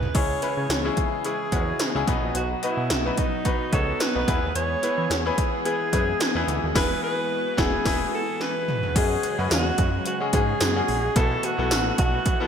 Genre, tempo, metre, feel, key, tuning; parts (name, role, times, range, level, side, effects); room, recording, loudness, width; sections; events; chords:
1980s-style pop; 109 BPM; 4/4; swing 55% on 16ths; F# dorian; A4 = 441 Hz
clear alto saxophone; melody; 0.0-12.5 s; D#4 to C#5; -28 LUFS; right 2 dB; digital delay
bright grand piano; accompaniment; 0.0-12.5 s; B2 to D#5; -27 LUFS; left 4 dB
fat analog bass; bass; 0.0-12.2 s; E1 to E3; -28 LUFS; right 1 dB
80s electronic pad drums; drums; 0.0-12.4 s; crash cymbal, hi-hat, kick drum, snare drum, tambourine, toms; -25 LUFS; equal; gated reverb on snare and toms, overdrive, gated reverb
lush unison pad; sustained chords; 0.1-12.5 s; B2 to G#4; -33 LUFS; right 1 dB; chorus, phaser
cowbell; percussion; 0.2-12.4 s; -40 LUFS; right 7 dB
moderate plate reverb, RT60 2.5 s; bright 1980s-style digital production; -21 LUFS; side -8 dB against mid
0.1-9.0 A section; 9.0-12.5 B section
band accent 6.8-9.0; drum fill 8.4-9.0
0.1 C#m; 2.1 B; 4.3 E; 9.0 F#sus2; 11.2 B7sus4